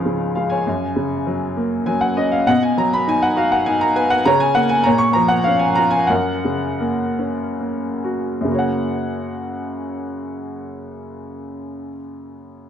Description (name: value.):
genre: classical, lyrical solo piano.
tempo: 64-102 BPM.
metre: 3/4.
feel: rubato.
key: F# major.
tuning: A4 = 440 Hz.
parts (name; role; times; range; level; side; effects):
bright upright piano; solo; 0.0-12.7 s; C#2 to C#6; -17 LUFS; equal; none.
room: moderate concert hall reverb, RT60 2.3 s.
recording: dark, warm production.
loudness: -16 LUFS.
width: side -9 dB against mid.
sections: 0.0-8.5 A section; 8.5-12.7 B section.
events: slowing down 4.3-8.5.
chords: 0.0 C#; 0.7 F#; 2.5 B; 4.3 F#add9/C#; 4.9 A#m; 6.1 F#.